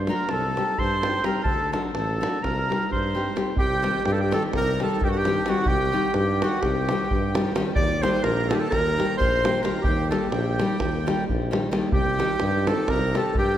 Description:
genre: balkan folk, Balkan wedding band.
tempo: 258 BPM (eighths).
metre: 9/8.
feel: straight.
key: C dorian sharp4.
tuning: A4 = 439 Hz.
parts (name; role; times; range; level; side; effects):
warm tuba; bass; 0.0-13.6 s; A1 to G2; -28 LUFS; equal; none.
clear clarinet; melody; 0.1-13.6 s; F#4 to C6; -26 LUFS; equal; none.
accordion; second line; 0.1-13.6 s; A4 to D6; -30 LUFS; right 3 dB; light tremolo tuning.
nylon-string guitar; accompaniment; 0.1-13.3 s; Eb3 to G4; -28 LUFS; left 3 dB; none.
davul; percussion; 0.1-13.5 s; none; -28 LUFS; right 1 dB; none.
room: wet concert hall reverb, RT60 2.5 s.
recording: none.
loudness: -21 LUFS.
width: side -11 dB against mid.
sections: 0.0-3.6 A section; 3.6-13.6 B section.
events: none.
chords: 0.3 Cm; 1.4 D; 2.4 Cm; 7.8 Eb; 11.9 Cm.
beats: 0.02 0.26 0.49 0.73 0.97 1.21 | 1.44 1.68 1.91 2.15 2.38 2.62 2.86 3.09 3.33 | 3.56 3.79 4.03 4.26 4.50 4.73 4.96 5.20 5.43 | 5.67 5.90 6.13 6.36 6.60 6.83 7.06 7.29 7.53 | 7.76 7.99 8.22 8.46 8.69 8.92 9.15 9.38 9.62 | 9.85 10.08 10.31 10.54 10.78 11.01 11.24 11.47 11.70 | 11.93 12.16 12.39 12.62 12.86 13.09 13.32 13.55.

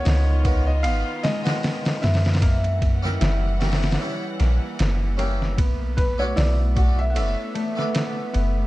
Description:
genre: trip hop.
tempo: 76 BPM.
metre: 4/4.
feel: swing 56% on 16ths.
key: unclear.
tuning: A4 = 440 Hz.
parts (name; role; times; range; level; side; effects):
felt-muted upright piano; melody; 0.0-8.7 s; B4 to F#5; -30 LUFS; equal; tape echo.
harpsichord; accompaniment; 0.0-8.7 s; D#3 to E5; -31 LUFS; equal; harmonic tremolo, vintage 12-bit sampler grit, tape echo.
bright symphonic string section; sustained chords; 0.0-8.7 s; D#3 to F#5; -35 LUFS; equal; vintage 12-bit sampler grit.
concert harp; arpeggios; 0.0-8.7 s; G#3 to E4; -33 LUFS; left 1 dB; ping-pong delay.
soft 808-style bass; bass; 0.0-8.7 s; F#1 to F#2; -21 LUFS; equal; tube saturation.
trip hop sampler-style drum kit; drums; 0.1-8.6 s; hi-hat, kick drum, ride cymbal, snare drum; -24 LUFS; equal; vintage 12-bit sampler grit.
room: light reverb, small room ambience.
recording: dark, warm production.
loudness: -19 LUFS.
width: side -17 dB against mid.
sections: 0.0-8.7 A section.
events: none.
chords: 0.0 C#13; 2.4 F#7b9; 5.6 Bm9.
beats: 0.05 0.84 1.63 | 2.42 3.21 4.00 4.79 | 5.58 6.37 7.16 7.95.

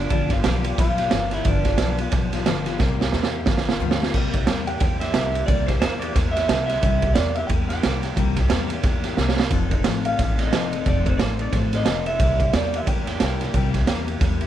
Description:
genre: rockabilly.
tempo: 179 BPM.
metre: 4/4.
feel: swing 60% on 8ths.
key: C mixolydian.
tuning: A4 = 436 Hz.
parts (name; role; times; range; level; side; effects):
electric guitar through a small old amp; melody; 0.0-2.0, 4.7-14.4 s; D4 to G5; -27 LUFS; right 1 dB; phaser, tape echo.
picked steel-string acoustic guitar; accompaniment; 0.0-14.5 s; G2 to A4; -28 LUFS; left 12 dB; none.
upright bass; bass; 0.0-14.5 s; F1 to E2; -25 LUFS; equal; none.
raw garage drum kit; drums; 0.1-14.5 s; crash cymbal, kick drum, ride cymbal, snare drum; -22 LUFS; right 2 dB; none.
room: light reverb, small room ambience.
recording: 1960s-style stereo.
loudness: -19 LUFS.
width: side -11 dB against mid.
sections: 0.0-4.1 A section; 4.1-14.5 A section.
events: drum fill 2.8-4.1, 9.2-9.5.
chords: 0.0 G7; 2.8 C7; 3.5 G7; 4.1 C7; 9.5 F7; 12.2 C7.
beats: | 0.11 0.45 0.79 1.12 | 1.46 1.79 2.13 2.47 | 2.80 3.14 3.48 3.81 | 4.15 4.49 4.82 5.16 | 5.49 5.83 6.17 6.50 | 6.84 7.17 7.51 7.84 | 8.18 8.51 8.85 9.18 | 9.52 9.85 10.19 10.53 | 10.86 11.20 11.53 11.87 | 12.20 12.54 12.87 13.21 | 13.54 13.88 14.21.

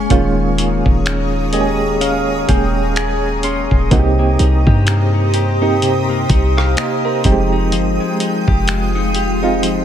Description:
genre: contemporary R&B.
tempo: 63 BPM.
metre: 4/4.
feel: swing 58% on 16ths.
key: unclear.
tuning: A4 = 442 Hz.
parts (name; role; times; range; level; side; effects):
soft electric-piano-like synth keys; accompaniment; 0.0-9.8 s; G3 to C6; -19 LUFS; right 4 dB; chorus, tremolo.
granular cloud pad; sustained chords; 0.0-9.8 s; Ab3 to Eb6; -21 LUFS; equal; built-in reverb.
direct-recorded clean electric guitar; arpeggios; 0.0-9.8 s; C3 to Ab4; -22 LUFS; left 8 dB; digital delay.
warm 808-style bass; bass; 0.0-9.8 s; Eb1 to G2; -18 LUFS; equal; none.
dusty soul sampler-style drum kit; drums; 0.1-9.8 s; finger snaps, hi-hat, kick drum, rim click; -18 LUFS; equal; none.
room: digital ambience.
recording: none.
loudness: -13 LUFS.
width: side -10 dB against mid.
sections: 0.0-3.9 A section; 3.9-9.8 B section.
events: synth keys fill 1.1-3.9.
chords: 0.1 Eb7sus4; 3.9 Cm7; 7.2 Fm9.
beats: | 0.10 1.06 2.01 2.96 | 3.91 4.87 5.82 6.77 | 7.72 8.68 9.63.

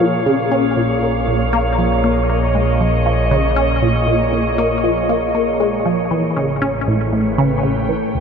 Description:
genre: ambient, sequencer-driven space music.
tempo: 118 BPM.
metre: 4/4.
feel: straight.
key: Bb phrygian.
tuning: A4 = 440 Hz.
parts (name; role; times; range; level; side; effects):
evolving wavetable pad; sustained chords; 0.0-8.2 s; A2 to G5; -19 LUFS; equal; chorus, built-in reverb.
resonant blip pluck; riff; 0.0-8.2 s; D2 to Db4; -18 LUFS; equal; phaser, ping-pong delay.
analog drone; bass; 0.8-8.1 s; A1 to Bb1; -22 LUFS; equal; chorus.
wind-like tuned noise texture; texture; 0.0-8.2 s; Db5 to A5; -25 LUFS; right 2 dB; built-in reverb.
room: wet huge ambient reverb, RT60 8.0 s.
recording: dark, warm production, nothing above 10.7 kHz.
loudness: -14 LUFS.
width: side -6 dB against mid.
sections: 0.0-8.1 A section.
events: none.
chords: 0.0 Bbm7; 6.1 A7.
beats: | 0.01 0.52 1.02 1.53 | 2.04 2.55 3.06 3.57 | 4.08 4.58 5.09 5.60 | 6.11 6.62 7.13 7.63 | 8.14.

